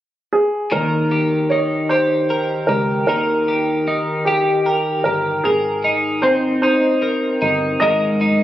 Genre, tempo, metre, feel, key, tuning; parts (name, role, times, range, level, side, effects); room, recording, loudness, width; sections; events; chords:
pop; 51 BPM (dotted quarters); 6/8; straight; A4 = 439 Hz
warm baby grand piano; melody; 0.3-8.4 s; G4 to Eb5; -18 LUFS; right 1 dB
twelve-string electric guitar; accompaniment; 0.7-8.4 s; Ab2 to Bb4; -18 LUFS; left 1 dB; analog chorus
fingered electric bass; bass; 0.7-8.4 s; G1 to Eb2; -27 LUFS; equal
light reverb, studio reverb; recorded on a phone in the room, club ambience, compression; -15 LUFS; side -13 dB against mid
0.7-8.4 A section
0.0 N.C.; 0.7 Eb; 5.4 Abadd9